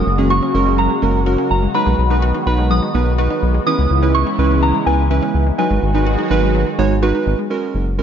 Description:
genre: pop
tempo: 125 BPM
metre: 4/4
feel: straight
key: unclear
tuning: A4 = 435 Hz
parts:
  - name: soft synth bell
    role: melody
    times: 0.0-7.0 s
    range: G#5 to D#6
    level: -22 LUFS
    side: equal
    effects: chorus, phaser, ping-pong delay
  - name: warm analog keys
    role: accompaniment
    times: 0.0-8.0 s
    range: G#3 to C#5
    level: -20 LUFS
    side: right 6 dB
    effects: chorus
  - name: lush unison pad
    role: sustained chords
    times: 0.0-7.5 s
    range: C#3 to F#4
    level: -22 LUFS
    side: equal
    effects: chorus, phaser
  - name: wide unison pluck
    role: arpeggios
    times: 0.0-7.5 s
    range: E3 to F#4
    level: -25 LUFS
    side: left 4 dB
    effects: auto-pan, ping-pong delay
  - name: round analog bass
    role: bass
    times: 0.0-8.0 s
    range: F#1 to C#2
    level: -17 LUFS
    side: left 1 dB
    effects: none
room: light reverb, digital ambience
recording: nothing above 7.5 kHz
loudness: -14 LUFS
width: side -8 dB against mid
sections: 0.0-7.5 A section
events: none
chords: 0.0 F#add9; 1.7 B6; 3.7 C#m7; 5.6 G#m7; 7.5 F#add9

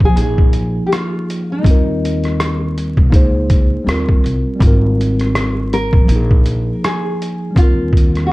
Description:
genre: lo-fi hip hop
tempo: 81 BPM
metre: 4/4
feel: swing 58% on 16ths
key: unclear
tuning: A4 = 440 Hz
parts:
  - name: nylon-string guitar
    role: melody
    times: 0.0-8.3 s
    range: Eb4 to Bb4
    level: -22 LUFS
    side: left 1 dB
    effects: low-pass filter
  - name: mellow tine electric piano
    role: accompaniment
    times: 0.0-8.3 s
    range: F3 to C5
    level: -20 LUFS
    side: equal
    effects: medium stereo tremolo, low-pass filter
  - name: upright bass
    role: bass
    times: 0.0-8.3 s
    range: Ab1 to Eb2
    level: -18 LUFS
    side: equal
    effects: none
  - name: trip hop sampler-style drum kit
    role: drums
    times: 0.0-8.3 s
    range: hi-hat, kick drum, rim click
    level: -13 LUFS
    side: equal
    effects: vintage 12-bit sampler grit
room: light reverb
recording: vinyl crackle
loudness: -12 LUFS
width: side -20 dB against mid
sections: 0.0-8.3 A section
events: none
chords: 0.2 Bb7sus4; 1.6 Ebadd9; 3.1 Db5; 3.9 Eb; 4.6 Ab69; 6.1 Bb7sus4; 7.6 Ebadd9

